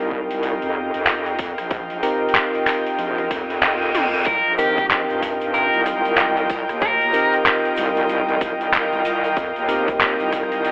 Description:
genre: glitch hop.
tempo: 94 BPM.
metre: 4/4.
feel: swing 61% on 16ths.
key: unclear.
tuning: A4 = 439 Hz.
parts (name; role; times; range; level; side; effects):
mellow tine electric piano; stabs; 0.0-10.7 s; C4 to Bb4; -24 LUFS; equal; fast stereo tremolo, sidechain pumping, digital delay.
wobble bass; bass; 0.0-10.7 s; Bb1 to G2; -26 LUFS; equal; chorus, tube saturation.
airy breathy pad; texture; 0.0-10.7 s; F4 to G5; -22 LUFS; equal; chorus, sidechain pumping.
electronic kick drum; drums; 0.1-10.5 s; none; -28 LUFS; equal; studio reverb.
pop drum kit; drums; 0.3-10.7 s; handclaps, hi-hat, rim click, toms; -22 LUFS; equal; studio reverb.
reverse cymbal; sound effects; 3.4-4.3 s; none; -26 LUFS; equal; none.
dark smooth lead guitar; melody; 4.3-7.3 s; G4 to Bb4; -21 LUFS; equal; overdrive, vintage 12-bit sampler grit, digital delay.
tube shaker; percussion; 4.3-10.7 s; none; -46 LUFS; equal; none.
room: moderate lush hall reverb, RT60 1.9 s.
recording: telephone sound.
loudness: -17 LUFS.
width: side -30 dB against mid.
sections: 0.0-10.7 A section.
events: reverse cymbal 3.4-4.3; drum fill 3.9-4.3.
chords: 0.0 F9sus4.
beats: 0.43 1.07 | 1.71 2.35 2.99 3.62 | 4.26 4.90 5.54 6.18 | 6.82 7.46 8.09 8.73 | 9.37 10.01 10.65.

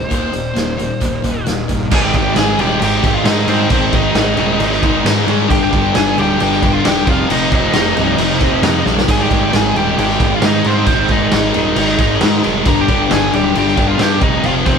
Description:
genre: quiet-loud alternative rock.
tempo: 134 BPM.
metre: 4/4.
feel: straight.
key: unclear.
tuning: A4 = 441 Hz.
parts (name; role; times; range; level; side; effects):
biting lead guitar; melody; 0.0-14.8 s; C4 to Bb5; -20 LUFS; equal; overdrive.
fingerpicked steel-string acoustic guitar; arpeggios; 0.0-1.9 s; Eb2 to Eb4; -28 LUFS; right 9 dB; none.
thick fuzz guitar; riff; 0.0-14.8 s; Eb2 to Ab3; -18 LUFS; left 6 dB; distortion.
fuzz picked electric bass; bass; 0.0-14.8 s; C1 to Ab2; -20 LUFS; equal; overdrive.
raw garage drum kit; drums; 0.1-14.8 s; crash cymbal, hi-hat, kick drum, snare drum; -17 LUFS; equal; none.
thick fuzz guitar; riff; 1.9-14.8 s; F2 to Ab3; -19 LUFS; right 8 dB; distortion.
room: moderate studio reverb, RT60 0.9 s.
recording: band playing live in one room.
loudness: -12 LUFS.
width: side -6 dB against mid.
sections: 0.0-1.9 A section; 1.9-14.8 B section.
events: drum fill 8.9.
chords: 0.1 Eb6; 1.9 Ab; 5.5 G5; 7.1 F5; 9.1 Ab; 12.7 G5; 14.2 F5.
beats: | 0.11 0.56 1.02 1.47 | 1.92 2.37 2.82 3.27 | 3.72 4.17 4.61 5.06 | 5.51 5.96 6.40 6.85 | 7.30 7.75 8.19 8.64 | 9.09 9.53 9.98 10.42 | 10.87 11.32 11.76 12.21 | 12.66 13.10 13.55 14.00 | 14.44.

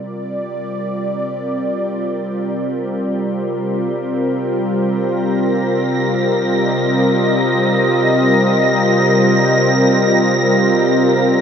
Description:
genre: ambient.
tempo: free time.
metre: none.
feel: none.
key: C minor.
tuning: A4 = 442 Hz.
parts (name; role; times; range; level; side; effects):
warm analog pad; sustained chords; 0.0-11.4 s; G3 to Eb5; -15 LUFS; equal; chorus.
organ-like drone; drone; 0.0-11.4 s; C3 to G3; -23 LUFS; left 1 dB; ensemble chorus, built-in reverb.
wind-like tuned noise texture; texture; 5.4-11.4 s; Bb6; -20 LUFS; right 1 dB; built-in reverb.
room: wet cathedral reverb, RT60 4.6 s.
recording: none.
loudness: -14 LUFS.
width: side -7 dB against mid.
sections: 0.0-11.4 A section.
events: fade-in on synth drone 0.0-11.4.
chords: 0.0 Bb; 4.8 Cm.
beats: free time.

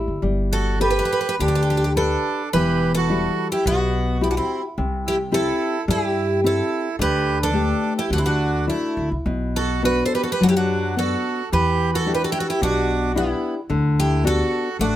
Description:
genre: fado-style ballad.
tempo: 98-111 BPM.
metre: 4/4.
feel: rubato.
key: G major.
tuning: A4 = 441 Hz.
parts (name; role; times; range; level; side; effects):
nylon-string guitar; accompaniment; 0.0-15.0 s; B2 to B4; -23 LUFS; left 3 dB; none.
upright bass; bass; 0.0-15.0 s; E1 to G2; -24 LUFS; equal; none.
picked twelve-string acoustic guitar; melody; 0.5-15.0 s; E4 to C5; -24 LUFS; right 1 dB; plate reverb.
accordion; second line; 0.5-15.0 s; A3 to A4; -26 LUFS; right 6 dB; none.
room: light reverb.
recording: none.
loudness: -18 LUFS.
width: side -12 dB against mid.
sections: 0.2-15.0 A section.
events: none.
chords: 0.2 Gadd9; 2.5 Emadd9; 4.8 C; 7.0 Dsus4; 8.1 Dadd9; 9.3 Bm; 11.5 Em7; 13.7 D6.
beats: | 0.22 0.81 1.39 1.96 | 2.53 3.09 3.65 4.21 | 4.77 5.32 5.88 6.43 | 6.98 7.54 8.10 8.68 | 9.26 9.84 10.42 10.98 | 11.53 12.07 12.62 13.16 | 13.70 14.24 14.79.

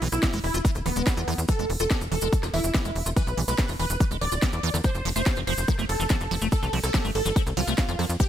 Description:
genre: psychedelic trance.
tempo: 143 BPM.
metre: 4/4.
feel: straight.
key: E phrygian dominant.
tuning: A4 = 440 Hz.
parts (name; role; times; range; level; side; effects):
supersaw stab; melody; 0.0-8.3 s; B3 to D5; -30 LUFS; right 1 dB; phaser, sidechain pumping, ping-pong delay.
liquid acid bass; riff; 0.0-8.2 s; D3 to F4; -31 LUFS; right 1 dB; phaser, auto-pan, sidechain pumping, digital delay.
tight sequencer bass; bass; 0.0-8.2 s; D1 to F2; -28 LUFS; equal; none.
techno drum kit; drums; 0.0-8.3 s; hi-hat, ride cymbal, rim click, snare drum; -32 LUFS; equal; none.
maracas; percussion; 0.1-8.3 s; none; -37 LUFS; right 2 dB; none.
electronic kick drum; drums; 0.2-8.3 s; none; -24 LUFS; equal; none.
room: digital ambience.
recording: none.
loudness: -22 LUFS.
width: side -10 dB against mid.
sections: 0.0-8.3 A section.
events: none.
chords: 0.0 E5; 4.8 F5.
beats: 0.23 0.65 1.07 | 1.49 1.91 2.33 2.75 | 3.17 3.58 4.00 4.42 | 4.84 5.26 5.68 6.10 | 6.52 6.94 7.36 7.78 | 8.20.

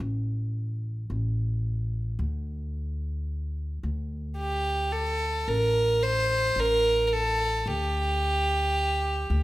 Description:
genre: Arabic maqam ensemble.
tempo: 110 BPM (eighths).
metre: 10/8.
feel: straight.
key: unclear.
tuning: A4 = 444 Hz.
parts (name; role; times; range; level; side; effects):
upright bass; bass; 0.0-9.4 s; A1 to D2; -29 LUFS; equal; none.
clear violin; melody; 4.4-9.4 s; G4 to C5; -24 LUFS; right 1 dB; none.
room: moderate recital hall reverb, RT60 1.5 s.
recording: none.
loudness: -25 LUFS.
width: side -16 dB against mid.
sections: 0.0-9.4 A section.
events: none.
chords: none.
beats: 0.01 0.55 1.10 1.65 | 2.19 2.74 3.29 3.84 4.38 4.93 5.48 6.02 6.57 7.12 | 7.67 8.21 8.76 9.31.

